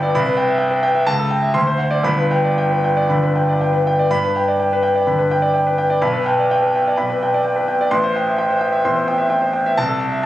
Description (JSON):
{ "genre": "classical, virtuoso piano study", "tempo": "114-132 BPM", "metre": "4/4", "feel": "rubato", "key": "G major", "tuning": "A4 = 441 Hz", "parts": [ { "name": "clear concert grand piano", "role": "solo", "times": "0.0-10.3 s", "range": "G1 to C6", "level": "-15 LUFS", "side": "equal", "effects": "none" } ], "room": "moderate recital hall reverb, RT60 1.4 s", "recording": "recorded on a phone in the room, studio reverb, compression", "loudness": "-15 LUFS", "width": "side -14 dB against mid", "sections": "0.0-4.1 A section; 4.1-10.3 B section", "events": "none", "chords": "0.1 Cmaj7; 1.1 A7/C#; 1.5 D7; 2.1 G; 6.0 G/B; 7.9 Am7" }